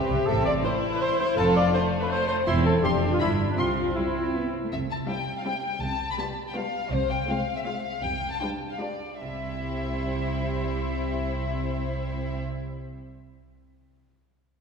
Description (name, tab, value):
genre	quick classical-period movement for symphony orchestra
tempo	146-166 BPM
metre	3/4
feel	straight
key	C major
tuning	A4 = 445 Hz
part	warm chamber violin section	melody	0.0-12.4 s	C5 to C6	-32 LUFS	left 4 dB	none
part	mellow cor anglais	second line	0.0-4.5 s	D4 to D5	-28 LUFS	right 2 dB	none
part	warm chamber violin section	second line	0.0-12.4 s	A3 to E5	-33 LUFS	left 4 dB	none
part	dark chamber viola section	accompaniment	0.0-12.4 s	G3 to D5	-31 LUFS	left 1 dB	none
part	dark chamber double bass section	bass	0.1-12.4 s	E1 to C2	-32 LUFS	right 2 dB	none
part	warm studio cello section	bass	0.1-12.4 s	E2 to C4	-31 LUFS	right 2 dB	none
room	wet concert hall reverb, RT60 2.3 s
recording	heard from further back in the room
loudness	-24 LUFS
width	side -6 dB against mid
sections	0.0-4.7 A section; 4.7-9.2 B section; 9.2-11.6 C section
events	slowing down 6.4-9.2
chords	0.3 Am; 1.4 F; 2.5 C/E; 2.8 Dm7/F; 3.2 G; 3.6 C; 5.8 G7/C; 6.9 Fm/C; 8.0 G7/C; 9.2 C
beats	| 0.28 0.64 1.00 | 1.37 1.73 2.10 | 2.47 2.84 3.21 | 3.59 3.97 4.35 | 4.72 5.09 5.46 | 5.82 6.19 6.56 | 6.92 7.29 7.65 | 8.03 8.41 8.80 | 9.21 9.61 10.02 | 10.42 10.82 11.22